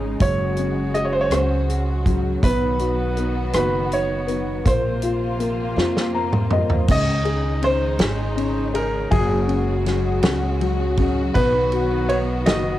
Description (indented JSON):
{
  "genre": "six-eight pop ballad",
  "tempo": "54 BPM (dotted quarters)",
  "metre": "6/8",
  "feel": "straight",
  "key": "Db major",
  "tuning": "A4 = 440 Hz",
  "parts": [
    { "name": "clear grand piano", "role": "melody", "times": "0.0-12.8 s", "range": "Ab4 to Eb5", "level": "-24 LUFS", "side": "right 1 dB", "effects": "cassette tape" },
    { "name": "dark upright piano", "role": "accompaniment", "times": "0.0-12.8 s", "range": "Gb3 to Bb5", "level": "-25 LUFS", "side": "left 6 dB", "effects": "cassette tape" },
    { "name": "rich studio string section", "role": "sustained chords", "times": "0.0-12.8 s", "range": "C3 to Gb4", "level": "-29 LUFS", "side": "equal", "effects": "cassette tape" },
    { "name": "fingerpicked plugged-in steel-string acoustic guitar", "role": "arpeggios", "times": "0.0-12.8 s", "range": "Cb3 to C5", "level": "-30 LUFS", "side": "right 7 dB", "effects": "cassette tape" },
    { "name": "upright bass", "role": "bass", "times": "0.0-12.8 s", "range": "Gb1 to F2", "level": "-24 LUFS", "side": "right 1 dB", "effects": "none" },
    { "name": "natural country drum kit", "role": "drums", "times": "0.2-12.6 s", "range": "crash cymbal, hi-hat, kick drum, ride cymbal, rim click, snare drum, toms", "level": "-22 LUFS", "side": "right 1 dB", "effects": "none" }
  ],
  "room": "light reverb, small room reverb",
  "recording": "home recording on cassette",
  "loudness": "-18 LUFS",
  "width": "side -14 dB against mid",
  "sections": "0.0-6.9 A section; 6.9-12.8 B section",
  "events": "drum fill 5.8-6.9; upright piano fill 5.8-6.9",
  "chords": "0.2 Gbsus2; 2.4 Cb; 4.7 Bbsus2; 6.9 Dbsus2; 9.1 Gbsus2; 11.4 Cb",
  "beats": "| 0.20 1.32 | 2.44 3.55 | 4.67 5.78 | 6.89 8.01 | 9.12 10.24 | 11.35 12.47"
}